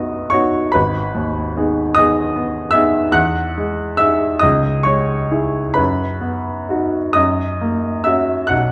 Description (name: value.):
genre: classical, romantic nocturne for solo piano.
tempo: 43-52 BPM (dotted quarters).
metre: 6/8.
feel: rubato.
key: B major.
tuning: A4 = 438 Hz.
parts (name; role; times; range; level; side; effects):
clear baby grand piano; solo; 0.0-8.7 s; G#1 to F#6; -17 LUFS; equal; none.
room: wet recital hall reverb, RT60 1.6 s.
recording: dark, warm production.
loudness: -17 LUFS.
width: mono.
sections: 0.0-8.7 A section.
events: none.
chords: 0.0 B; 0.7 G#m; 3.2 Emaj7; 4.4 C#m; 5.8 B/F#; 7.2 F#.